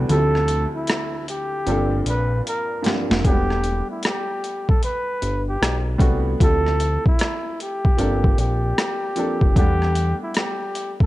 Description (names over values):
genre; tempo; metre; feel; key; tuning
lo-fi hip hop; 76 BPM; 4/4; swing 63% on 16ths; E phrygian; A4 = 440 Hz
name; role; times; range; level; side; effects
felt-muted upright piano; accompaniment; 0.0-11.1 s; D2 to F#5; -26 LUFS; right 1 dB; low-pass filter
fat analog bass; bass; 0.0-10.1 s; E1 to E2; -22 LUFS; equal; none
breathy flugelhorn; melody; 0.1-11.1 s; E4 to B4; -25 LUFS; equal; low-pass filter
boom bap sampler-style drum kit; drums; 0.1-11.1 s; hi-hat, kick drum, rim click, snare drum; -20 LUFS; equal; overdrive, vintage 12-bit sampler grit
room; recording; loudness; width
digital ambience; none; -18 LUFS; side -17 dB against mid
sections
0.0-11.1 A section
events
break 0.0-3.2; drum fill 2.5-3.2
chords
0.1 Dm11; 1.7 Gm11; 3.2 Em11; 6.4 Dm11; 8.0 Gm11; 9.6 Em11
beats
| 0.09 0.88 1.67 2.46 | 3.25 4.04 4.82 5.61 | 6.40 7.19 7.98 8.77 | 9.56 10.35